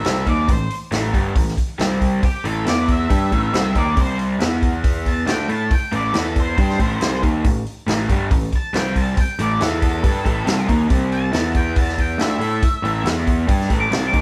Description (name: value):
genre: blues rock power trio and southern rock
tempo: 138 BPM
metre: 4/4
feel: straight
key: A minor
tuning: A4 = 438 Hz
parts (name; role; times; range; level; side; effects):
- octave-fuzz lead guitar; melody; 0.0-14.2 s; G4 to D6; -27 LUFS; equal; distortion
- raw garage guitar; riff; 0.0-14.2 s; G2 to A4; -24 LUFS; equal; overdrive
- picked electric bass; bass; 0.0-14.2 s; G1 to A2; -27 LUFS; equal; none
- vintage drum kit; drums; 0.0-14.2 s; hi-hat, kick drum, snare drum; -22 LUFS; equal; none
room: moderate stone room reverb, RT60 1.0 s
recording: band playing live in one room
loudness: -19 LUFS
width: mono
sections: 0.0-14.2 A section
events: none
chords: 0.0 Am; 1.8 C5; 2.2 A5; 2.7 E5; 3.1 Am; 4.0 C5; 4.4 E5; 5.3 A5; 6.1 E5; 6.6 Am; 8.7 C5; 9.2 A5; 9.6 E5; 10.0 Am; 10.9 C5; 11.3 E5; 12.2 A5; 13.1 E5; 13.5 Am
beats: 0.04 | 0.48 0.92 1.35 1.79 | 2.22 2.66 3.10 3.53 | 3.97 4.40 4.84 5.27 | 5.71 6.14 6.58 7.01 | 7.44 7.88 8.31 8.74 | 9.17 9.61 10.04 10.47 | 10.90 11.33 11.76 12.19 | 12.62 13.05 13.48 13.92